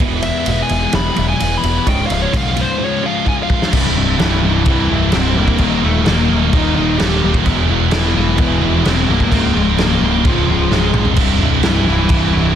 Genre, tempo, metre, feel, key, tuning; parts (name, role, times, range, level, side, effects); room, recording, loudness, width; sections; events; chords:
quiet-loud alternative rock; 129 BPM; 4/4; straight; A4 = 440 Hz
clean electric guitar; arpeggios; 0.0-3.7 s; Db2 to E3; -26 LUFS; right 9 dB; ensemble chorus
heavy high-gain guitar; riff; 0.0-12.6 s; C2 to F4; -20 LUFS; right 14 dB; distortion
thick fuzz guitar; riff; 0.0-12.6 s; C2 to F4; -21 LUFS; left 12 dB; distortion
growling picked electric bass; bass; 0.0-12.6 s; C1 to B1; -18 LUFS; equal; overdrive
raw garage drum kit; drums; 0.0-12.2 s; crash cymbal, kick drum, ride cymbal, snare drum, toms; -18 LUFS; equal
high-gain lead guitar; melody; 0.2-12.6 s; E3 to B5; -20 LUFS; left 1 dB; distortion
overdriven semi-hollow guitar; riff; 3.7-12.6 s; C2 to E3; -22 LUFS; right 2 dB
light reverb, small room ambience; dense, heavily limited modern master; -12 LUFS; side -9 dB against mid
0.0-3.7 A section; 3.7-12.6 B section
half time 0.0-3.7; lead electric guitar solo 0.0-3.7; drum fill 3.3-3.7, 10.7-11.2
0.0 E; 1.9 Db; 3.7 C; 5.6 Eb; 7.5 E; 9.3 Db; 11.2 C